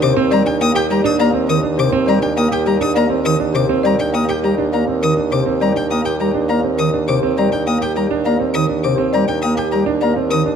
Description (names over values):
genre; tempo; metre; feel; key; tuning
classical, minimalist pattern music; 102 BPM; 3/4; straight; Eb major; A4 = 445 Hz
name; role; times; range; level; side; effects
folk marimba with soft mallets; melody; 0.0-10.5 s; G4 to G5; -22 LUFS; left 11 dB; none
chamber organ, sparkling flutes; accompaniment; 0.0-10.4 s; C3 to Bb3; -20 LUFS; right 1 dB; none
dark concert grand piano; arpeggios; 0.0-10.6 s; C4 to G4; -21 LUFS; right 6 dB; none
rich violin; arpeggios; 0.0-10.4 s; G5 to Eb6; -24 LUFS; left 4 dB; none
mellow bassoon; bass; 0.0-10.6 s; Eb2; -20 LUFS; right 2 dB; none
room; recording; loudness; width
moderate scoring stage reverb, RT60 1.7 s; close, detailed microphones; -14 LUFS; side -7 dB against mid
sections
0.0-10.6 A section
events
none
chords
0.0 Ebmaj7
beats
0.02 0.61 | 1.19 1.78 2.37 | 2.96 3.55 4.13 | 4.72 5.31 5.90 | 6.49 7.08 7.67 | 8.25 8.84 9.43 | 10.02